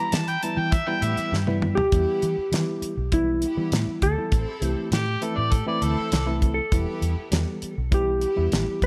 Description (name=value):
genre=straight-eighth soul blues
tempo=100 BPM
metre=4/4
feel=straight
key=E minor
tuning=A4 = 440 Hz
part: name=overdriven harmonica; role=second line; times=0.0-1.3, 4.9-6.4 s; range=G4 to A#5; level=-31 LUFS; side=equal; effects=analog delay
part: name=tine electric piano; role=accompaniment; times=0.0-8.8 s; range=E3 to G4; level=-33 LUFS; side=equal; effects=overdrive
part: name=bright studio string section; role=sustained chords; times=0.0-8.7 s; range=B3 to A4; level=-42 LUFS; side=equal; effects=none
part: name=vintage muted fingered electric bass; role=bass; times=0.1-8.9 s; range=E1 to E3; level=-29 LUFS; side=equal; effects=none
part: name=damped 70s drum kit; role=drums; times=0.1-8.9 s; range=hi-hat, kick drum, snare drum, toms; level=-26 LUFS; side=equal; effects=none
part: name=clean lap steel guitar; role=melody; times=1.8-8.9 s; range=E4 to A4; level=-28 LUFS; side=equal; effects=none
room=light reverb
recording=none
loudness=-24 LUFS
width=mono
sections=0.0-1.9 A section; 1.9-8.9 B section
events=harmonica solo 0.0-1.9; drum fill 1.3-1.9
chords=0.0 Em; 4.3 Am; 6.7 Em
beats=0.13 0.73 1.33 | 1.93 2.53 3.13 3.73 | 4.33 4.93 5.53 6.13 | 6.73 7.33 7.93 8.53